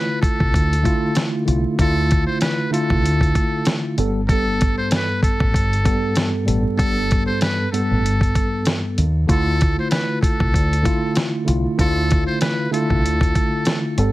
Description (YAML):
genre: hip hop, boom-bap hip-hop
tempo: 96 BPM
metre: 4/4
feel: swing 58% on 16ths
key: D dorian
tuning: A4 = 440 Hz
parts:
  - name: trumpet with metal mute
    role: melody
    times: 0.0-13.8 s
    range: A4 to C5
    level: -25 LUFS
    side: equal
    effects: digital delay
  - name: mellow tine electric piano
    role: accompaniment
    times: 0.0-14.1 s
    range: G2 to A4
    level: -21 LUFS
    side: equal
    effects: medium stereo tremolo, cassette tape
  - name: dusty soul sampler-style drum kit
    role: drums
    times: 0.2-14.1 s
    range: hi-hat, kick drum, snare drum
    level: -20 LUFS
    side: equal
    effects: none
  - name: deep dub fingered electric bass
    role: bass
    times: 0.4-14.1 s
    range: G1 to Eb2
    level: -21 LUFS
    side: equal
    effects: none
room: light reverb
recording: heavily compressed radio sound, vinyl crackle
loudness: -16 LUFS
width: side -17 dB against mid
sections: 0.0-14.1 A section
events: none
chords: 0.0 Dmadd9; 4.0 Gadd9; 9.3 Dmadd9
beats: 0.54 1.16 | 1.79 2.41 3.04 3.66 | 4.29 4.91 5.54 6.16 | 6.79 7.41 8.04 8.66 | 9.29 9.91 10.54 11.16 | 11.79 12.41 13.04 13.66